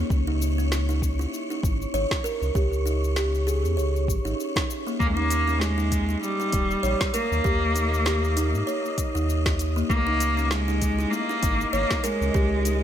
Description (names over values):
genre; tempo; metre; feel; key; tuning
organic downtempo; 98 BPM; 4/4; swing 56% on 16ths; unclear; A4 = 440 Hz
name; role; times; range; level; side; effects
buzzing kalimba; arpeggios; 0.0-12.7 s; Bb3 to Db5; -28 LUFS; right 1 dB; tape echo
round analog bass; bass; 0.0-12.8 s; Eb1 to Ab2; -25 LUFS; equal; sidechain pumping
wind-like tuned noise texture; texture; 0.0-12.8 s; Db4 to Eb5; -36 LUFS; right 1 dB; built-in reverb
deep house drum kit; drums; 0.1-12.8 s; cabasa, hi-hat, snare drum; -31 LUFS; left 1 dB; small room ambience
electronic kick drum; drums; 0.1-12.5 s; none; -27 LUFS; equal; small room ambience
bright cello; melody; 5.0-12.8 s; G3 to Bb3; -26 LUFS; left 1 dB; vintage 12-bit sampler grit, tape echo
room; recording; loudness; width
light reverb, digital ambience; none; -22 LUFS; side -10 dB against mid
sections
0.0-12.8 A section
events
none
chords
0.1 Db5; 5.0 Eb5; 9.9 Db5